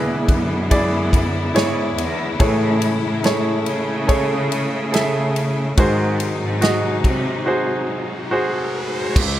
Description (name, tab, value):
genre	pop ballad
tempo	71 BPM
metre	4/4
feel	straight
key	unclear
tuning	A4 = 440 Hz
part	clear baby grand piano	accompaniment	0.0-9.2 s	G#2 to E5	-21 LUFS	equal	none
part	warm studio string section	sustained chords	0.0-9.1 s	B#2 to E4	-25 LUFS	left 1 dB	none
part	bright symphonic cello section	bass	0.0-9.4 s	C#2 to C#3	-23 LUFS	equal	none
part	natural country drum kit	drums	0.3-9.4 s	crash cymbal, kick drum, ride cymbal, snare drum	-20 LUFS	equal	none
part	riser	sound effects	7.1-9.2 s	none	-31 LUFS	right 1 dB	none
room	small room ambience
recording	none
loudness	-17 LUFS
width	side -13 dB against mid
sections	0.0-9.2 A section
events	riser 7.1-9.2; break 7.5-9.2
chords	0.0 E7; 2.4 Amaj7; 5.8 G#7